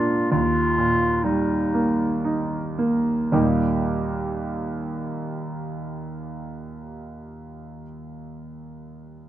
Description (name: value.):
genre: classical, romantic duo for clarinet and grand piano.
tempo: 52-69 BPM.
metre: 3/4.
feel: rubato.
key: Eb major.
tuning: A4 = 439 Hz.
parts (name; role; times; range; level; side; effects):
clear clarinet; melody; 0.0-2.2 s; Eb4 to F4; -22 LUFS; left 1 dB; none.
bright concert grand piano; accompaniment; 0.0-9.3 s; Eb2 to G4; -24 LUFS; right 2 dB; none.
room: moderate large studio reverb, RT60 0.9 s.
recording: dark, warm production.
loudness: -21 LUFS.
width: side -12 dB against mid.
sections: 0.0-3.3 A section; 3.3-9.3 B section.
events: slowing down 0.0-3.3.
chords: 0.3 Eb.